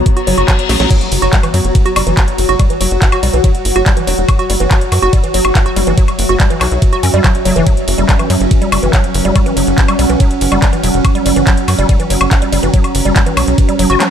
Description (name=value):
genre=psychedelic trance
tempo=142 BPM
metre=4/4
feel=straight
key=F# major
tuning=A4 = 440 Hz
part: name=evolving wavetable pad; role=sustained chords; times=0.0-14.1 s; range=F#3 to F#4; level=-19 LUFS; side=right 2 dB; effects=chorus, built-in reverb, sidechain pumping
part: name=tight sequencer bass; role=bass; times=0.0-14.0 s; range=E1 to F#2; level=-15 LUFS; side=equal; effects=none
part: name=ethereal airy pad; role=texture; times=0.0-14.1 s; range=F#4 to A#5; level=-20 LUFS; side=left 1 dB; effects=ensemble chorus, built-in reverb, sidechain pumping
part: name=drum and bass drum kit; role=drums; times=0.1-14.1 s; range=crash cymbal, handclaps, hi-hat, ride cymbal, snare drum, toms, woodblock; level=-18 LUFS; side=equal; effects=none
part: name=electronic kick drum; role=drums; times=0.1-13.7 s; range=none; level=-11 LUFS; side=equal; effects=none
part: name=reverse cymbal and zap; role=sound effects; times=0.2-0.9 s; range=none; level=-22 LUFS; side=left 5 dB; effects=none
part: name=woody wave-folded pluck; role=riff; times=0.2-14.0 s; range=E3 to F#4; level=-18 LUFS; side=equal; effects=chorus, auto-pan, sidechain pumping, tape echo
room=light reverb, digital ambience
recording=none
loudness=-10 LUFS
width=side -9 dB against mid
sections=0.0-14.1 A section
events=reverse cymbal 0.2-0.9; drum fill 0.7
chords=0.0 F#5